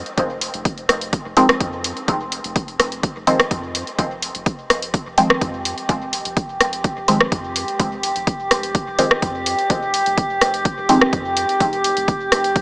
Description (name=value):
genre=dub techno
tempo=126 BPM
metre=4/4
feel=straight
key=F minor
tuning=A4 = 440 Hz
part: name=punchy analog drum machine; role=drums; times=0.1-12.6 s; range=hi-hat, rim click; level=-19 LUFS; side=equal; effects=overdrive
part: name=soft dub sub bass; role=bass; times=0.2-12.6 s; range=F1 to F2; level=-35 LUFS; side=equal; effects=sidechain pumping
part: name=electronic kick drum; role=drums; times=0.2-12.6 s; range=none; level=-21 LUFS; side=equal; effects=overdrive
part: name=filtered dub chord stab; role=stabs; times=1.4-11.0 s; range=Eb3 to C4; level=-21 LUFS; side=equal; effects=phaser, sidechain pumping, dub echo
part: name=drifting glass-harmonics texture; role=texture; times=5.6-12.6 s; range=G4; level=-22 LUFS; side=equal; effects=chorus, built-in reverb, sidechain pumping
room=moderate huge ambient reverb, RT60 5.5 s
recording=small speaker sound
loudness=-17 LUFS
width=side -24 dB against mid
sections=0.0-4.5 A section; 4.5-12.6 A section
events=filter sweep on synth stab 4.5-12.6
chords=0.0 Fm7